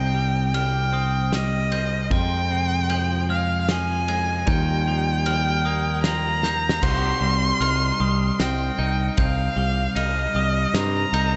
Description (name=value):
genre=post-rock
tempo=76 BPM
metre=3/4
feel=straight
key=C minor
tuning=A4 = 442 Hz
part: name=rich violin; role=melody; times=0.0-11.4 s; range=Eb5 to C6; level=-28 LUFS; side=equal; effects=delay
part: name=pedal steel guitar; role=sustained chords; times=0.0-11.4 s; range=G3 to Eb5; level=-39 LUFS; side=equal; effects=none
part: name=glockenspiel with hard plastic mallets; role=arpeggios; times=0.0-11.4 s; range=Eb6 to Ab7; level=-34 LUFS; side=equal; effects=delay
part: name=twelve-string electric guitar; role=arpeggios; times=0.0-11.4 s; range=F2 to Eb4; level=-31 LUFS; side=equal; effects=delay
part: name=modern bright picked electric bass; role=bass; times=0.0-11.4 s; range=C2 to G2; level=-26 LUFS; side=equal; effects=none
part: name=loose indie drum kit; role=drums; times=0.5-11.3 s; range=crash cymbal, kick drum, ride cymbal, snare drum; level=-31 LUFS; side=equal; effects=none
room=moderate lush hall reverb, RT60 2.3 s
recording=dreamy mix soaked in reverb, nothing above 7.9 kHz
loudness=-22 LUFS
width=mono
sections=0.0-6.8 A section; 6.8-11.4 B section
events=drum fill 6.4-6.8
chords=0.0 Cm; 2.1 Fm; 4.5 Ebadd9; 6.8 Cm